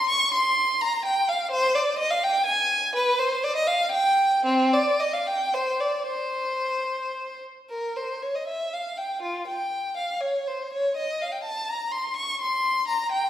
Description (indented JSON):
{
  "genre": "classical, baroque-style suite movement for unaccompanied violin",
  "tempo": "73-85 BPM (dotted quarters)",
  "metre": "6/8",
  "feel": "rubato",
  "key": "C minor",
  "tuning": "A4 = 440 Hz",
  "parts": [
    { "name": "rich violin", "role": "solo", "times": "0.0-13.3 s", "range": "C4 to Db6", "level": "-22 LUFS", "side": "equal", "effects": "none" }
  ],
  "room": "wet recital hall reverb, RT60 1.3 s",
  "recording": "heard from further back in the room",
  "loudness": "-22 LUFS",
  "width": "side -11 dB against mid",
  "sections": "0.0-7.7 A section; 7.7-13.3 A section",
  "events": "none",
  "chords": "none",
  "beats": "| 0.09 0.81 | 1.52 2.23 | 2.96 3.69 | 4.47 5.28 | 6.08 6.90 | 7.71 8.47 | 9.22 9.96 | 10.72 11.45 | 12.17 12.89"
}